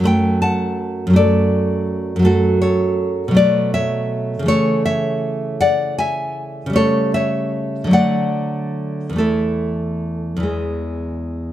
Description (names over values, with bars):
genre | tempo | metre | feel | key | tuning
romantic piece for solo classical guitar | 46-56 BPM (dotted quarters) | 6/8 | rubato | A major | A4 = 440 Hz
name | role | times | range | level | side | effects
nylon-string guitar | solo | 0.0-11.5 s | E2 to B5 | -16 LUFS | equal | none
room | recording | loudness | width
moderate recital hall reverb, RT60 1.7 s | dark, warm production | -16 LUFS | side -12 dB against mid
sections
0.0-11.5 A section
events
none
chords
0.1 D/F#; 2.2 F#m; 3.4 B5; 4.5 A/C#; 6.8 A7/C#; 7.9 D; 9.2 Esus4; 10.5 E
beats
| 0.06 1.16 | 2.25 3.36 | 4.48 5.62 | 6.76 7.93 | 9.18 10.46